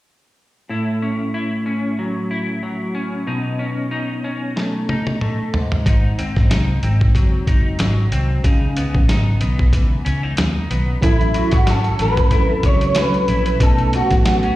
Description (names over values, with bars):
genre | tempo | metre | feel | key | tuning
indie pop, bedroom pop | 93 BPM | 4/4 | swing 55% on 16ths | A lydian | A4 = 443 Hz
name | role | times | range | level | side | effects
clean electric guitar | accompaniment | 0.7-14.6 s | G#2 to E4 | -23 LUFS | left 1 dB | lush chorus, vibrato effect, slapback echo
lo-fi sampler-style drum kit | drums | 4.6-14.6 s | hi-hat, kick drum, snare drum, toms | -18 LUFS | equal | none
vintage muted fingered electric bass | bass | 5.9-14.5 s | F#1 to D#2 | -19 LUFS | equal | none
electric guitar at the edge of break-up | melody | 11.0-14.5 s | E4 to C#5 | -19 LUFS | equal | ensemble chorus, slapback echo, tape echo
reed electric piano | accompaniment | 11.0-14.6 s | F#3 to B4 | -24 LUFS | right 2 dB | slapback echo
room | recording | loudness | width
light reverb | live gig heard through the venue's PA, recital hall reverb | -16 LUFS | side -16 dB against mid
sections
0.7-11.0 A section; 11.0-14.6 B section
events
drum fill 4.6-5.9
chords
0.7 A6; 3.3 B9; 5.5 G#7; 8.4 C#m9; 11.0 A6; 13.6 B9